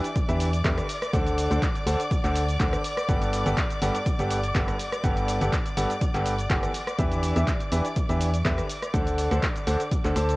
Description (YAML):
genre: piano house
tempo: 123 BPM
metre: 4/4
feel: swing 53% on 16ths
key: G major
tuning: A4 = 441 Hz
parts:
  - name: warm studio violin section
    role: sustained chords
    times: 0.0-10.4 s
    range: D5 to D6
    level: -33 LUFS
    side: left 1 dB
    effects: sidechain pumping, cassette tape
  - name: clear concert grand piano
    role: riff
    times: 0.0-10.4 s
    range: G2 to A5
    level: -28 LUFS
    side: equal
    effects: vintage 12-bit sampler grit, sidechain pumping, cassette tape, tape echo
  - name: punchy analog drum machine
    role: drums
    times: 0.0-10.4 s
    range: handclaps, hi-hat, rim click, shaker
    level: -33 LUFS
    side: equal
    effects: cassette tape
  - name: electronic kick drum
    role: drums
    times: 0.2-10.0 s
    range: none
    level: -27 LUFS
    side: equal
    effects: cassette tape
  - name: organ-like FM bass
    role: bass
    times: 0.3-10.4 s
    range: G1 to E2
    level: -26 LUFS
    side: equal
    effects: sidechain pumping
room: light reverb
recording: home recording on cassette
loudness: -23 LUFS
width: side -22 dB against mid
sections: 0.0-10.4 A section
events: none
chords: 0.0 Em7; 0.9 D7; 3.1 Gmaj9; 6.7 Em7; 8.7 D7